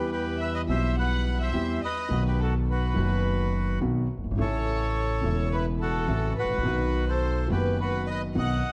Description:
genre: tango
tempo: 105 BPM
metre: 4/4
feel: rubato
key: unclear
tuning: A4 = 440 Hz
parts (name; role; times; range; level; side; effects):
- bandoneon; melody; 0.0-8.7 s; E4 to F#5; -34 LUFS; equal; none
- warm studio violin section; second line; 0.0-8.7 s; A4 to F#5; -37 LUFS; equal; none
- warm concert grand piano; accompaniment; 0.0-8.6 s; E1 to G4; -31 LUFS; equal; none
- upright bass; bass; 0.0-8.6 s; E1 to E2; -31 LUFS; equal; none
room: moderate large studio reverb, RT60 1.2 s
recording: dark, warm production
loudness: -27 LUFS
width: mono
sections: 0.0-8.7 A section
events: none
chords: 0.0 Em; 2.1 B; 4.4 A; 6.7 B

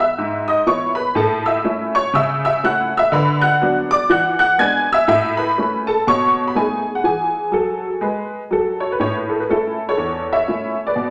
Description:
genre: jazz, stride piano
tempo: 122 BPM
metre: 4/4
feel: swing 59% on 8ths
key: A major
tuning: A4 = 442 Hz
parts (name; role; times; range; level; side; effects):
- honky-tonk upright piano; solo; 0.0-11.1 s; E2 to G#6; -18 LUFS; equal; none
room: wet large studio reverb, RT60 1.3 s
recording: nothing above 11.0 kHz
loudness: -18 LUFS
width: mono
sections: 0.0-9.0 A section; 9.0-11.1 B section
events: none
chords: 0.0 E/G#; 1.2 A; 2.1 A/C#; 3.1 Bm/D; 4.1 E9; 5.1 A; 6.1 B7; 7.0 E; 9.0 A

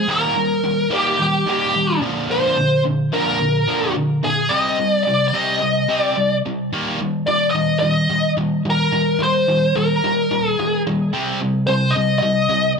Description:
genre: rock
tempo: 109 BPM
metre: 4/4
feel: straight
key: unclear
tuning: A4 = 440 Hz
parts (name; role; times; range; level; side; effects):
- smooth overdriven lead guitar; melody; 0.0-12.7 s; G4 to Eb5; -18 LUFS; left 1 dB; wah
- cranked stack guitar; riff; 0.0-12.8 s; Bb2 to C4; -20 LUFS; equal; overdrive
room: moderate large studio reverb, RT60 0.9 s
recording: none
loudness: -16 LUFS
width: side -5 dB against mid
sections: 0.0-6.7 A section; 6.7-12.8 B section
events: none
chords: 0.1 Eb; 2.0 Bb; 4.5 Cm; 6.7 Eb; 11.1 Cm

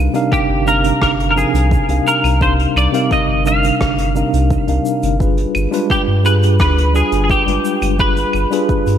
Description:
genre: sunset chillout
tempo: 86 BPM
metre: 4/4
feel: straight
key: C minor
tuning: A4 = 438 Hz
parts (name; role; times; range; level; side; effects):
- tine electric piano; accompaniment; 0.0-9.0 s; C3 to F5; -17 LUFS; moving between left 3 dB and right 5 dB; medium stereo tremolo, auto-pan, ping-pong delay
- warm sub bass; bass; 0.0-9.0 s; G1 to G2; -16 LUFS; equal; none
- vintage brush drum kit; drums; 0.1-9.0 s; claves, hi-hat, rim click, shaker; -28 LUFS; right 1 dB; gated reverb
- semi-hollow electric guitar; melody; 0.3-9.0 s; G4 to F5; -18 LUFS; equal; ensemble chorus, ping-pong delay
- electronic kick drum; drums; 0.3-8.8 s; none; -20 LUFS; equal; none
room: moderate lush hall reverb, RT60 2.0 s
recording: bright 1980s-style digital production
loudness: -12 LUFS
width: side -9 dB against mid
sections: 0.0-9.0 A section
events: none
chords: 0.0 Cm11; 5.2 G7b9

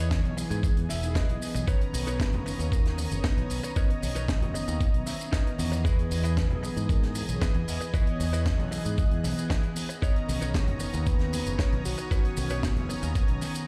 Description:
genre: nu-disco, nu disco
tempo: 115 BPM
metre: 4/4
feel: straight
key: B major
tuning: A4 = 441 Hz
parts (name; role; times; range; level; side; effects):
- soft octave-layered synth lead; melody; 0.0-13.4 s; F#4 to E5; -42 LUFS; equal; chorus, vintage 12-bit sampler grit, analog delay
- mellow synth brass; accompaniment; 0.0-13.7 s; D#3 to A#5; -37 LUFS; equal; chorus
- lush unison pad; sustained chords; 0.0-13.7 s; C#5 to F#6; -45 LUFS; equal; chorus, sidechain pumping
- direct-recorded clean electric guitar; riff; 0.0-13.5 s; D#4 to D#5; -43 LUFS; equal; subtle chorus, tape echo
- modern bright fingered electric bass; bass; 0.0-13.4 s; E1 to G#2; -33 LUFS; equal; sidechain pumping
- electronic kick drum; drums; 0.1-13.3 s; none; -28 LUFS; equal; none
- tight funk drum kit; drums; 0.1-13.7 s; hi-hat, shaker, snare drum; -39 LUFS; equal; none
- congas; percussion; 1.9-13.5 s; none; -42 LUFS; equal; none
room: little or no reverb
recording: played on a big sound system in a bare room, stone room reverb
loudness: -28 LUFS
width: mono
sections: 0.0-13.7 A section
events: none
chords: 0.0 Emaj7; 1.7 Bmaj9; 5.9 Emaj7; 10.0 Bmaj9

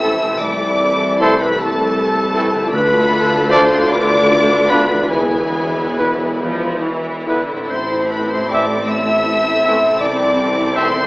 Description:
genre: classical, slow romantic movement for symphony orchestra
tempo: 46-55 BPM (dotted quarters)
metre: 6/8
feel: rubato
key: A minor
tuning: A4 = 435 Hz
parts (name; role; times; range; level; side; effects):
- warm symphonic violin section; melody; 0.0-11.1 s; G#5 to E6; -21 LUFS; left 1 dB; none
- clear clarinet; second line; 0.0-11.1 s; G#4 to E5; -21 LUFS; equal; none
- hollow large flute ensemble; second line; 0.0-11.1 s; G#4 to E5; -20 LUFS; equal; none
- warm symphonic violin section; second line; 0.0-11.1 s; E4 to B4; -23 LUFS; equal; none
- rich symphonic viola section; accompaniment; 0.0-11.1 s; D3 to D4; -24 LUFS; equal; none
- clear trombone section; sustained chords; 0.0-10.9 s; D3 to B3; -25 LUFS; equal; none
- warm French horn section; sustained chords; 0.0-10.9 s; B3 to F4; -26 LUFS; left 1 dB; none
- concert harp; arpeggios; 0.0-11.1 s; A2 to E5; -28 LUFS; left 1 dB; none
- clear trumpet; stabs; 0.0-10.9 s; A4 to E5; -20 LUFS; equal; none
- mellow tuba; bass; 0.0-11.1 s; E1 to D2; -23 LUFS; equal; none
- warm studio double bass section; bass; 0.0-11.1 s; E1 to D2; -32 LUFS; right 1 dB; none
- warm symphonic cello section; bass; 0.0-11.1 s; C2 to C3; -26 LUFS; equal; none
- timpani; percussion; 2.7-3.9 s; D3; -26 LUFS; equal; none
room: wet concert hall reverb, RT60 1.8 s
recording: AM radio sound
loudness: -13 LUFS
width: side -22 dB against mid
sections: 0.0-11.1 A section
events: none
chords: 0.4 Am/C; 2.7 Dm; 3.9 Bdim/D; 5.1 E; 7.7 Am; 10.0 Am/C

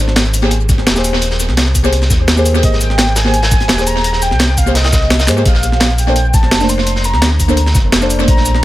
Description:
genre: liquid drum and bass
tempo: 170 BPM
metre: 4/4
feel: straight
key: unclear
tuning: A4 = 445 Hz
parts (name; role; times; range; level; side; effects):
- sub bass with octave; bass; 0.0-8.6 s; Eb1 to Ab2; -15 LUFS; equal; none
- breakbeat sampler-style drum kit; drums; 0.1-8.6 s; cabasa, handclaps, hi-hat, snare drum; -17 LUFS; equal; small room ambience, tape echo
- crunchy breakbeat drum kit; drums; 0.2-8.5 s; hi-hat, snare drum; -20 LUFS; equal; high-pass filter on hats, small room ambience, high-pass filter on snare, high-pass filter on room, tape echo
- deep mellow chord stab; accompaniment; 0.4-8.6 s; A3 to C5; -18 LUFS; equal; chorus, dub echo
- electronic kick drum; drums; 0.7-8.4 s; none; -14 LUFS; equal; small room ambience
- warm velvety synth lead; melody; 2.6-8.6 s; Eb5 to C6; -19 LUFS; equal; chorus, tape echo
room: light reverb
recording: echo-heavy mix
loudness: -10 LUFS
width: side -15 dB against mid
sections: 0.0-8.6 A section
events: drum fill 5.3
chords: 0.0 Abmaj9; 5.5 Bbmaj9

